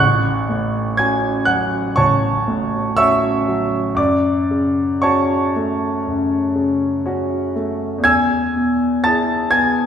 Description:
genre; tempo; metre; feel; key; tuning
classical, romantic nocturne for solo piano; 57-63 BPM; 4/4; rubato; F# minor; A4 = 441 Hz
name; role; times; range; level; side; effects
clear grand piano; solo; 0.0-9.9 s; A1 to A6; -15 LUFS; equal; none
room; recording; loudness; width
wet recital hall reverb, RT60 1.6 s; recorded in a church or concert hall; -15 LUFS; side -8 dB against mid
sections
0.0-9.9 A section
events
none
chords
0.0 F#m/A; 4.0 F#m; 8.1 E

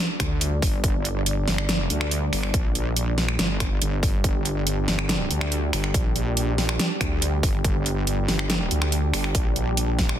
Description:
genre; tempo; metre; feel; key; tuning
heavy wobble dubstep; 141 BPM; 4/4; half-time; G minor; A4 = 439 Hz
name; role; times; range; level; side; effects
supersaw chords; sustained chords; 0.0-10.2 s; G3 to D5; -30 LUFS; equal; sidechain pumping, low-pass filter
wobble bass; bass; 0.2-10.2 s; G1 to D2; -25 LUFS; equal; chorus, overdrive
dubstep drum kit; drums; 0.2-10.2 s; finger snaps, hi-hat, snare drum; -25 LUFS; right 1 dB; none
electronic kick drum; drums; 0.2-10.1 s; none; -24 LUFS; equal; overdrive
room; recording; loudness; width
digital ambience; dense, heavily limited modern master; -21 LUFS; side -10 dB against mid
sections
0.0-10.2 A section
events
none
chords
0.0 G5

